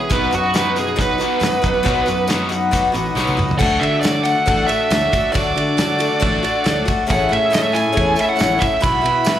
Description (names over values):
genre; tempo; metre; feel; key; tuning
folk rock and heartland rock; 138 BPM; 4/4; straight; unclear; A4 = 440 Hz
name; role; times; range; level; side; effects
bluesy overdriven lead guitar; melody; 0.0-9.4 s; F#4 to B5; -19 LUFS; right 2 dB; distortion, slapback echo
picked twelve-string acoustic guitar; accompaniment; 0.0-9.4 s; B2 to G#4; -21 LUFS; left 4 dB; slapback echo
accordion; sustained chords; 0.0-9.4 s; A4 to E6; -27 LUFS; right 3 dB; none
raw garage guitar; riff; 0.0-3.6 s; B2 to B3; -23 LUFS; equal; overdrive, slapback echo
fingered electric bass; bass; 0.1-9.4 s; A1 to D3; -24 LUFS; equal; none
damped 70s drum kit; drums; 0.1-9.4 s; crash cymbal, hi-hat, kick drum, ride cymbal, snare drum, toms; -22 LUFS; equal; none
tambourine; percussion; 0.1-9.4 s; none; -37 LUFS; right 3 dB; none
room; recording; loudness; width
moderate club reverb, RT60 0.6 s; live gig heard through the venue's PA, club reverb; -15 LUFS; side -11 dB against mid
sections
0.0-3.6 A section; 3.6-9.4 B section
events
lead electric guitar solo 0.0-3.6; drum fill 3.2-3.6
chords
0.1 B; 3.6 D; 7.1 Amaj7; 8.8 Bsus4